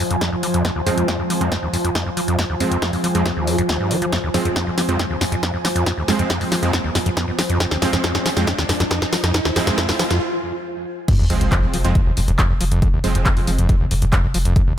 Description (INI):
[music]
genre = driving peak-time techno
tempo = 138 BPM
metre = 4/4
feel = straight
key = F minor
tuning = A4 = 442 Hz
[part]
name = screaming distorted acid line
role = riff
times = 0.0-14.7 s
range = Eb2 to F3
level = -22 LUFS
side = equal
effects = distortion, chorus, cassette tape, sidechain pumping, ping-pong delay
[part]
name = deep dark ambient pad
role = drone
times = 0.0-10.2 s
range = F3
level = -27 LUFS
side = equal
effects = chorus, built-in reverb, sidechain pumping
[part]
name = ethereal airy pad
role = texture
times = 0.0-10.2 s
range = F4 to Ab5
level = -30 LUFS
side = left 1 dB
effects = ensemble chorus, built-in reverb, phaser, sidechain pumping
[part]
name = punchy analog drum machine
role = drums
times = 0.1-14.6 s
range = crash cymbal, handclaps, hi-hat, snare drum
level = -23 LUFS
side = equal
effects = sidechain pumping on hats, high-pass filter on hats, high-pass filter on snare, sidechain pumping on cymbals, high-pass filter on cymbals
[part]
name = electronic kick drum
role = drums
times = 0.2-14.6 s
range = none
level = -19 LUFS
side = equal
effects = high-pass filter on kick
[part]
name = supersaw stab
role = stabs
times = 0.9-13.6 s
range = F3 to C4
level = -25 LUFS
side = right 3 dB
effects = sidechain pumping, low-pass filter, ping-pong delay
[part]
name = riser and sub drop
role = sound effects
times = 5.6-12.8 s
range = none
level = -27 LUFS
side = equal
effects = none
[part]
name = saturated sub bass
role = bass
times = 11.2-14.8 s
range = F1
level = -21 LUFS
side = equal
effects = overdrive, sidechain pumping, low-pass filter
[sound]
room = light reverb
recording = none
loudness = -17 LUFS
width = side -10 dB against mid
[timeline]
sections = 0.0-11.1 A section; 11.1-14.8 B section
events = build-up 0.0-11.1; drum fill 0.0-10.2; filter sweep on supersaw synth 0.0-11.1; riser 5.6-10.2; break 10.2-11.1; drop 11.1-14.8; impact 11.1-12.8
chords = 0.0 Fm